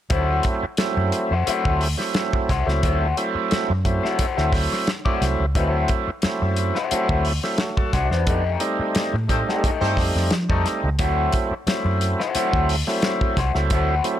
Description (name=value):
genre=funk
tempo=88 BPM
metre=4/4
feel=straight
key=D mixolydian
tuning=A4 = 444 Hz
part: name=electric guitar at the edge of break-up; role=accompaniment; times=0.1-14.0 s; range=A3 to D5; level=-27 LUFS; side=left 6 dB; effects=wah
part: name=overdriven tonewheel organ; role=stabs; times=0.1-14.2 s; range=F#3 to A4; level=-24 LUFS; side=right 2 dB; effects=slow rotary speaker
part: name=vintage muted fingered electric bass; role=bass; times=0.1-14.0 s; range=C2 to F3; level=-23 LUFS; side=equal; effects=none
part: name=damped 70s drum kit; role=drums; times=0.1-14.2 s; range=hi-hat, kick drum, snare drum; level=-24 LUFS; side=equal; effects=none
part: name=clear horn section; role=second line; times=9.3-10.0 s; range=A3 to C5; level=-30 LUFS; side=left 2 dB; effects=none
room=small room ambience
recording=none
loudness=-19 LUFS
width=side -11 dB against mid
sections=0.1-14.2 A section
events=band accent 8.3-11.0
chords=0.1 D9; 8.3 F9; 11.0 D9